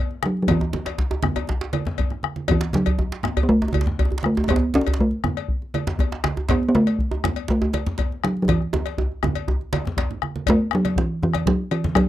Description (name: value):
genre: west african traditional, West African drum ensemble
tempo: 120 BPM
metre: 4/4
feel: straight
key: A major pentatonic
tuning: A4 = 439 Hz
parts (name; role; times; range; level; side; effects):
- talking drum; melody; 0.0-12.1 s; E3 to C#4; -20 LUFS; equal; none
- congas; percussion; 0.1-12.1 s; none; -28 LUFS; right 4 dB; none
- djembe; percussion; 0.1-12.1 s; none; -30 LUFS; left 3 dB; none
- bombo; percussion; 0.2-12.1 s; none; -25 LUFS; left 2 dB; none
- cowbell; percussion; 0.5-12.1 s; none; -30 LUFS; left 19 dB; none
- djembe; percussion; 0.5-10.1 s; none; -26 LUFS; right 2 dB; none
room: light reverb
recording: dry, close 1970s-style studio recording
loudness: -20 LUFS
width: side -13 dB against mid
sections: 0.0-10.5 A section; 10.5-12.1 B section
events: drum fill 1.9-2.5, 8.5-10.5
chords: none